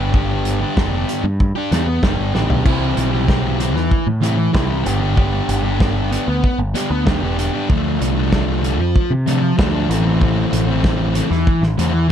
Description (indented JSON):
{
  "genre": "indie rock",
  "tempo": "95 BPM",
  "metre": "4/4",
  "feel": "straight",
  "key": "C major",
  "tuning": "A4 = 442 Hz",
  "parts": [
    { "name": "sludgy distorted guitar", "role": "riff", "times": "0.0-12.1 s", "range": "E3 to G4", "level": "-19 LUFS", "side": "equal", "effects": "overdrive" },
    { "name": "growling picked electric bass", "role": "bass", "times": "0.0-12.1 s", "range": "E1 to C3", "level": "-19 LUFS", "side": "equal", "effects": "overdrive" },
    { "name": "loose indie drum kit", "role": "drums", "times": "0.1-11.9 s", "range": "crash cymbal, hi-hat, kick drum, snare drum, toms", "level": "-19 LUFS", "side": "equal", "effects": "none" }
  ],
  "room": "light reverb",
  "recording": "dark, warm production",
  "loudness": "-15 LUFS",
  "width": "side -9 dB against mid",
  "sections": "0.0-2.7 A section; 2.7-12.1 B section",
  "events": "drum fill 2.3-2.7",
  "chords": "0.0 G7; 2.7 Cmaj7; 4.9 G; 7.7 Dm; 9.9 Am"
}